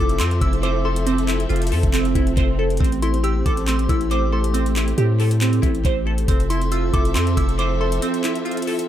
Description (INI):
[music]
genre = hip hop, trap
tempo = 138 BPM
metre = 4/4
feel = half-time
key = unclear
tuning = A4 = 440 Hz
[part]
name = soft synth bell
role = second line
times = 0.0-8.0 s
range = C6 to E6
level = -30 LUFS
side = left 1 dB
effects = chorus, tape echo
[part]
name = glassy wavetable pluck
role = accompaniment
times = 0.0-8.9 s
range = C4 to C5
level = -23 LUFS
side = right 3 dB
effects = chorus, tape echo
[part]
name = warm symphonic string section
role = sustained chords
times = 0.0-8.9 s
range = F3 to E5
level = -28 LUFS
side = left 2 dB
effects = none
[part]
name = long sustained 808-style bass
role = bass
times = 0.0-8.0 s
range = F1 to A2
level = -21 LUFS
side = equal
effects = none
[part]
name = trap drum kit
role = drums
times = 0.1-8.9 s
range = handclaps, hi-hat, kick drum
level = -23 LUFS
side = equal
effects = tape echo
[sound]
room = little or no reverb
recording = echo-heavy mix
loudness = -17 LUFS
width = side -11 dB against mid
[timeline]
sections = 0.0-8.9 A section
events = break 8.0-8.9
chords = 0.0 Fmaj7; 2.8 Am7; 6.3 Fmaj7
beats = 0.20 0.63 | 1.07 1.50 1.94 2.37 | 2.81 3.24 3.67 4.11 | 4.54 4.98 5.41 5.85 | 6.28 6.72 7.15 7.59 | 8.02 8.46